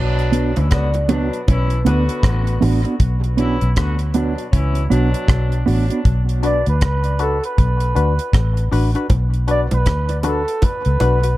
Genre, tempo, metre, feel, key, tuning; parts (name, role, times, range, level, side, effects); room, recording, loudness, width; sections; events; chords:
dub reggae; 79 BPM; 4/4; swing 62% on 16ths; B minor; A4 = 439 Hz
warm horn section; second line; 0.0-5.6 s; B2 to F#4; -26 LUFS; left 1 dB; dub echo
vintage muted fingered electric bass; bass; 0.0-11.4 s; A1 to D2; -18 LUFS; equal
deep reggae drum kit; drums; 0.2-11.4 s; hi-hat, kick drum, rim click; -19 LUFS; equal
mellow electric guitar; accompaniment; 0.3-6.0 s; B3 to F#4; -21 LUFS; right 4 dB; low-pass filter, dub echo
percussive organ stab; stabs; 0.3-0.5, 6.4-11.3 s; D4 to B4; -25 LUFS; left 5 dB; chorus, phaser, high-pass filter, low-pass filter, dub echo
bongos; percussion; 0.6-2.8, 9.1-11.2 s; -30 LUFS; right 2 dB
warm flugelhorn; melody; 0.7-11.4 s; A4 to D5; -23 LUFS; right 1 dB; low-pass filter, dub echo
light reverb; dark, warm production; -15 LUFS; side -16 dB against mid
0.0-11.4 A section
break 0.0-6.0; filter sweep 0.0-11.4; part muted 3.0-9.1
0.0 Bm